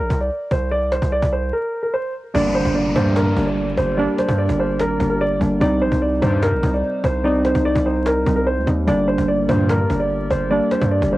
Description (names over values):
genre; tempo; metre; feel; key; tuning
hip hop, trap; 147 BPM; 4/4; half-time; G minor; A4 = 436 Hz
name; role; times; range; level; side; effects
dark concert grand piano; melody; 0.0-11.2 s; Bb4 to D5; -21 LUFS; right 1 dB; low-pass filter, cassette tape
distorted 808-style bass; bass; 0.0-11.2 s; G1 to G2; -22 LUFS; equal; distortion
cajon; drums; 0.0-11.1 s; none; -26 LUFS; equal; none
muted felt-like synth keys; accompaniment; 2.3-11.2 s; G3 to Eb4; -21 LUFS; right 1 dB; chorus, low-pass filter, cassette tape
warbly tape-like pad; sustained chords; 2.3-11.2 s; C3 to D5; -31 LUFS; left 1 dB; chorus, built-in reverb, cassette tape
downlifter; sound effects; 2.3-5.6 s; none; -29 LUFS; left 1 dB; none
polysynth with added fifth; stabs; 3.0-3.2, 6.2-6.5, 9.5-9.8 s; D2 to G3; -24 LUFS; left 1 dB; chorus, cassette tape
room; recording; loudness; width
light reverb; home recording on cassette, vinyl crackle; -16 LUFS; side -17 dB against mid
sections
0.0-2.3 A section; 2.3-11.2 B section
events
break 1.5-2.3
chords
0.0 C5; 2.3 Gm; 5.6 Cm; 8.9 Gm